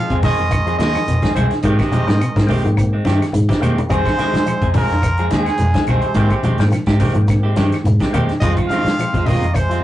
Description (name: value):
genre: afrobeat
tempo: 106 BPM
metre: 4/4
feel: swing 54% on 16ths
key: F minor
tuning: A4 = 440 Hz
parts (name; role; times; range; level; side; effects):
- clear trumpet; melody; 0.0-9.8 s; Ab4 to F5; -23 LUFS; right 1 dB; none
- muted trombone section; second line; 0.0-9.8 s; Ab2 to F3; -31 LUFS; right 1 dB; none
- trombone with metal mute; second line; 0.0-9.8 s; Eb3 to C4; -29 LUFS; right 4 dB; none
- percussive tonewheel organ; accompaniment; 0.0-9.2 s; Ab3 to G5; -28 LUFS; equal; slow rotary speaker, chorus vibrato
- electric guitar with an envelope filter; arpeggios; 0.0-9.8 s; C3 to Ab3; -28 LUFS; left 3 dB; none
- clean electric guitar; stabs; 0.1-9.8 s; Eb3 to Ab4; -22 LUFS; right 1 dB; none
- fingered electric bass; bass; 0.1-9.8 s; C2 to F3; -18 LUFS; equal; none
- vintage drum kit; drums; 0.1-9.8 s; hi-hat, kick drum, snare drum; -21 LUFS; equal; none
- congas; percussion; 0.2-9.4 s; none; -22 LUFS; equal; none
- shekere; percussion; 0.2-9.7 s; none; -28 LUFS; right 1 dB; none
- claves; percussion; 0.5-9.7 s; none; -32 LUFS; left 2 dB; none
room: wet booth ambience, RT60 0.3 s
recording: rough rehearsal-room recording, warm saturation, nothing above 10.4 kHz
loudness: -14 LUFS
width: side -13 dB against mid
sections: 0.0-9.8 A section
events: drum fill 3.3-3.9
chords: 0.0 Fm7; 1.6 Abmaj7; 3.9 Fm7; 6.2 Abmaj7; 8.4 Fm7